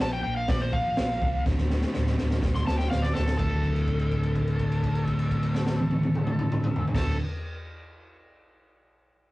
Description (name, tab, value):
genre	garage rock duo or trio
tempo	124 BPM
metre	4/4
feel	straight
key	D minor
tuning	A4 = 442 Hz
part	overdriven slide guitar	melody	0.0-7.2 s	A4 to C6	-32 LUFS	equal	none
part	fuzz guitar	riff	0.0-7.2 s	D2 to Bb3	-28 LUFS	equal	distortion
part	hollow-body short-scale picked electric bass	bass	0.0-7.1 s	D1 to D2	-29 LUFS	equal	none
part	raw garage drum kit	drums	0.0-7.1 s	crash cymbal, hi-hat, kick drum, snare drum, toms	-29 LUFS	equal	vintage 12-bit sampler grit
room	wet studio reverb, RT60 0.5 s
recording	rough rehearsal-room recording, cassette tape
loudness	-24 LUFS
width	side -19 dB against mid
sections	0.0-3.4 A section; 3.4-7.2 B section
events	drum fill 1.5-3.4; held note 3.4-7.0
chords	0.0 Bb5; 1.5 D5